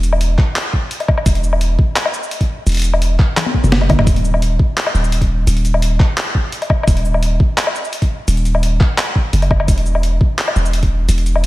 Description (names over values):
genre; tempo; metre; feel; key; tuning
half-time drum and bass; 171 BPM; 4/4; half-time; unclear; A4 = 439 Hz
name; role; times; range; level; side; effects
long sustained 808-style bass; bass; 0.0-11.5 s; Eb1 to F#1; -14 LUFS; equal; none
boom bap sampler-style drum kit; drums; 0.0-11.5 s; handclaps, hi-hat, shaker, snare drum, toms, woodblock; -19 LUFS; left 1 dB; none
electronic kick drum; drums; 0.4-10.9 s; none; -14 LUFS; equal; none
room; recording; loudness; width
light reverb; none; -13 LUFS; side -18 dB against mid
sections
0.0-11.5 A section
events
drum fill 3.4-4.1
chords
none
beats
0.21 0.56 0.91 | 1.26 1.61 1.96 2.31 | 2.66 3.02 3.37 3.72 | 4.07 4.42 4.77 5.12 | 5.47 5.82 6.17 6.52 | 6.88 7.23 7.58 7.93 | 8.28 8.63 8.98 9.33 | 9.68 10.03 10.38 10.73 | 11.09 11.44